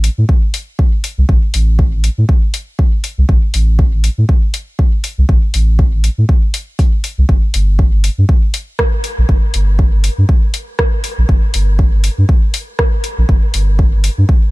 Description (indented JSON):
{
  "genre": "dub techno",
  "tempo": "120 BPM",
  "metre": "4/4",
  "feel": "swing 56% on 16ths",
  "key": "G minor",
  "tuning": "A4 = 440 Hz",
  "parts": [
    { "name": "soft dub sub bass", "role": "bass", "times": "0.0-14.2 s", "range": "G1 to A2", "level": "-12 LUFS", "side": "equal", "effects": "sidechain pumping" },
    { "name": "deep house drum kit", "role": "drums", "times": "0.0-14.1 s", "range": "hi-hat, rim click", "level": "-21 LUFS", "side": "left 1 dB", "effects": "overdrive" },
    { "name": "electronic kick drum", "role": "drums", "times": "0.3-14.4 s", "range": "none", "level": "-12 LUFS", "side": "equal", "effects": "overdrive" }
  ],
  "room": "little or no reverb",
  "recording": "none",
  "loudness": "-11 LUFS",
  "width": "side -21 dB against mid",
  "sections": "0.0-14.5 A section",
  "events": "none",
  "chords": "none"
}